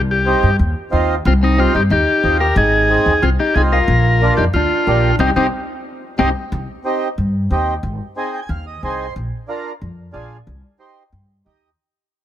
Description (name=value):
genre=latin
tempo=182 BPM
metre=4/4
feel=straight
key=C minor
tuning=A4 = 441 Hz
part: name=upright bass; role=bass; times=0.0-11.7 s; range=Ab1 to G2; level=-17 LUFS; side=equal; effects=none
part: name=combo organ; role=melody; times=0.1-6.3 s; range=C4 to Bb4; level=-18 LUFS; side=equal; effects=none
part: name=mellow accordion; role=accompaniment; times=0.3-11.7 s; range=Bb3 to Ab5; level=-22 LUFS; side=right 2 dB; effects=none
part: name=clean electric guitar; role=second line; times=1.3-6.3 s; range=C4 to G4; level=-21 LUFS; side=left 4 dB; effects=none
room=light reverb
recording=none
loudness=-14 LUFS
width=side -11 dB against mid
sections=0.0-6.5 A section; 6.5-11.8 B section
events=band accent 5.2-6.5; fade-out 6.5-11.8; accordion fill 8.2-9.2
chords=0.0 Cm; 2.6 Ab; 3.9 Bb; 5.2 Cm; 7.8 Ab; 9.2 Bb; 10.5 Cm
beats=0.27 0.59 0.92 | 1.25 1.58 1.91 2.24 | 2.57 2.90 3.23 3.56 | 3.88 4.21 4.54 4.87 | 5.20 5.53 5.86 6.19 | 6.52 6.85 7.17 7.50 | 7.83 8.16 8.49 8.82 | 9.15 9.48 9.81 10.14 | 10.47 10.80 11.13 11.46